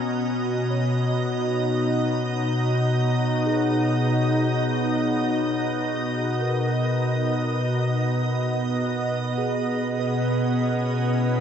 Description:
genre	ambient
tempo	free time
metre	none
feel	none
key	B major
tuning	A4 = 440 Hz
part	soft additive organ-like pad	sustained chords	0.0-11.4 s	B2 to A#5	-22 LUFS	equal	ensemble chorus, built-in reverb, shimmer reverb
part	mellow tine electric piano	arpeggios	0.0-11.4 s	G#4 to C#5	-34 LUFS	equal	medium stereo tremolo, diffuse ambient delay, shimmer reverb
part	analog drone	drone	0.0-11.4 s	B3 to F#4	-30 LUFS	equal	chorus
room	wet huge ambient reverb, RT60 7.8 s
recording	worn, warbling old tape, cassette tape, warbly pitch drift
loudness	-21 LUFS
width	side -8 dB against mid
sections	0.0-11.4 A section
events	fade-in on tine electric piano 0.0-11.4; fade-out on synth drone 0.0-11.4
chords	0.0 Bmaj7; 8.4 C#madd9/B

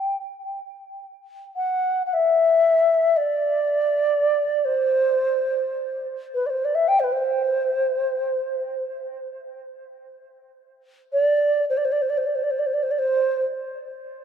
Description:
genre	world meditative, free-time meditation music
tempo	free time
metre	none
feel	none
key	C lydian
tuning	A4 = 441 Hz
part	reedy low xiao	solo	0.0-13.4 s	B4 to G5	-20 LUFS	equal	dub echo
room	wet plate reverb, RT60 3.1 s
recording	echo-heavy mix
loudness	-19 LUFS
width	side -8 dB against mid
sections	0.0-13.7 A section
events	none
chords	none

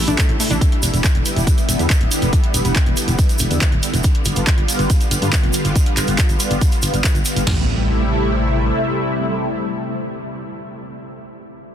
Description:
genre	uplifting trance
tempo	140 BPM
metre	4/4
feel	straight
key	A minor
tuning	A4 = 440 Hz
part	analog string pad	sustained chords	0.0-10.9 s	C3 to F4	-22 LUFS	equal	ensemble chorus, phaser, sidechain pumping
part	solid FM bass	bass	0.0-8.7 s	D1 to G2	-20 LUFS	equal	sidechain pumping
part	wide unison pluck	arpeggios	0.1-0.5 s	A2 to D4	-27 LUFS	left 2 dB	sidechain pumping, dub echo
part	punchy analog drum machine	drums	0.1-7.5 s	handclaps, hi-hat	-24 LUFS	right 1 dB	none
part	tube shaker	percussion	0.1-7.5 s	none	-26 LUFS	right 2 dB	none
part	house drum kit	drums	0.2-7.6 s	crash cymbal, kick drum, snare drum, toms	-17 LUFS	equal	none
part	impact	sound effects	7.5-11.0 s	none	-30 LUFS	equal	none
room	light reverb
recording	dense, heavily limited modern master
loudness	-15 LUFS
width	side -9 dB against mid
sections	0.0-7.5 A section; 7.5-10.9 B section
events	filter sweep on FM bass 0.0-7.5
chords	0.0 Am7; 0.6 Em7; 4.0 G7; 7.5 Am7

